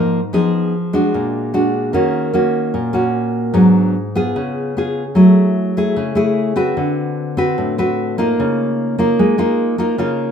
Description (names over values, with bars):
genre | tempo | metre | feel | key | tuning
bossa nova | 149 BPM | 4/4 | straight | Db major | A4 = 441 Hz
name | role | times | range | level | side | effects
nylon-string guitar | solo | 0.0-10.3 s | Ab2 to Cb5 | -14 LUFS | equal | none
room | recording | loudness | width
light reverb | minimal, uncompressed stereo recording | -14 LUFS | side -7 dB against mid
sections
0.0-10.3 A section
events
none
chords
0.3 Fm7b5; 1.1 Bbaug7; 1.9 Ebm7; 3.5 Abm7b5; 4.4 Db7; 5.2 Gbm9; 6.8 D6; 8.4 Db69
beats
| 0.33 0.73 1.14 1.54 | 1.94 2.34 2.75 3.15 | 3.55 3.95 4.35 4.75 | 5.16 5.56 5.96 6.36 | 6.76 7.17 7.57 7.97 | 8.37 8.78 9.18 9.58 | 9.98